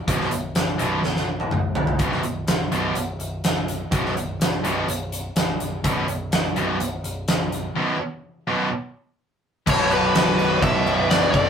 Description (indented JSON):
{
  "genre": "hard rock",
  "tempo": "125 BPM",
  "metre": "4/4",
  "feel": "straight",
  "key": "unclear",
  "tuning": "A4 = 442 Hz",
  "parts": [
    { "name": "heavy high-gain guitar", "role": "riff", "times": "0.1-11.5 s", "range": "B1 to B2", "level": "-25 LUFS", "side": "right 2 dB", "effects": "distortion" },
    { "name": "scooped high-gain guitar", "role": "riff", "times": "0.1-11.5 s", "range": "B1 to B2", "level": "-26 LUFS", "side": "left 3 dB", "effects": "distortion" },
    { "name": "growling picked electric bass", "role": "bass", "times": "0.1-11.5 s", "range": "B0 to B1", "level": "-31 LUFS", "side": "left 1 dB", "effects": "overdrive" },
    { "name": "huge arena drum kit", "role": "drums", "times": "0.1-11.5 s", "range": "crash cymbal, hi-hat, kick drum, snare drum, toms", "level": "-22 LUFS", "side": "equal", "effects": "none" },
    { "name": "biting lead guitar", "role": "melody", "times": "9.7-11.5 s", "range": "B4 to E5", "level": "-22 LUFS", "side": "left 3 dB", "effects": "overdrive" },
    { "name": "smooth overdriven lead guitar", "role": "second line", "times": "9.7-11.5 s", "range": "F#4 to B4", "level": "-32 LUFS", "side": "right 2 dB", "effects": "none" },
    { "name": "airy breathy pad", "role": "sustained chords", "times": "9.7-11.5 s", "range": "B3 to C#5", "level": "-33 LUFS", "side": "equal", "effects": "none" }
  ],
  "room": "moderate studio reverb, RT60 0.6 s",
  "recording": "rough rehearsal-room recording",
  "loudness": "-20 LUFS",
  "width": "side -7 dB against mid",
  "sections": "0.0-9.7 A section; 9.7-11.5 B section",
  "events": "drum fill 1.0-2.0; break 7.8-9.7",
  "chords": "0.0 B5",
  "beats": "| 0.08 0.56 1.04 1.52 | 2.00 2.48 2.96 3.44 | 3.92 4.40 4.88 5.36 | 5.84 6.32 6.80 7.28 | 7.76 8.24 8.72 9.19 | 9.67 10.15 10.63 11.10"
}